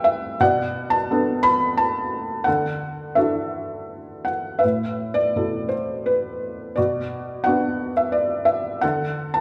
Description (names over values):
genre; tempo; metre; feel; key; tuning
classical, lyrical solo piano; 85 BPM; 3/4; uneven beats, rubato; unclear; A4 = 445 Hz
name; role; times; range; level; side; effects
felt-muted upright piano; solo; 0.0-9.4 s; G2 to B5; -22 LUFS; equal; none
room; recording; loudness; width
wet recital hall reverb, RT60 1.5 s; recorded in a church or concert hall; -22 LUFS; mono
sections
0.0-9.4 A section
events
none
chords
0.4 Bm7; 2.5 Dadd9; 4.6 Asus2; 6.8 Bm; 8.8 D